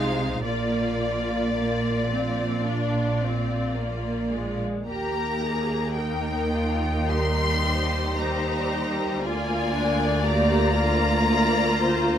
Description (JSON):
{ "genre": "classical, slow romantic movement for string orchestra", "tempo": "52-60 BPM", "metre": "4/4", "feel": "rubato", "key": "unclear", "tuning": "A4 = 438 Hz", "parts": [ { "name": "rich symphonic violin section", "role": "melody", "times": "0.0-12.2 s", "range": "D5 to C6", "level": "-29 LUFS", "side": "left 4 dB", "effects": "none" }, { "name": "clear symphonic violin section", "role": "second line", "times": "0.0-12.2 s", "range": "F4 to D5", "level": "-29 LUFS", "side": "left 2 dB", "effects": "none" }, { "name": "rich symphonic viola section", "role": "accompaniment", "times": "0.0-12.2 s", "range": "G3 to G4", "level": "-27 LUFS", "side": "right 1 dB", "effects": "none" }, { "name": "clear symphonic double bass section", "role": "bass", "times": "0.0-12.2 s", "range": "Bb1 to Eb2", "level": "-30 LUFS", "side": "right 2 dB", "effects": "none" }, { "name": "rich symphonic cello section", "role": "bass", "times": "0.0-12.2 s", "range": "D2 to C3", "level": "-29 LUFS", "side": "right 1 dB", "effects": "none" } ], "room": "light reverb", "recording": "close, detailed microphones", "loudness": "-22 LUFS", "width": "side -9 dB against mid", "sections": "0.0-12.2 A section", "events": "none", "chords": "0.4 Bb; 4.9 Eb; 9.2 Bb7/D" }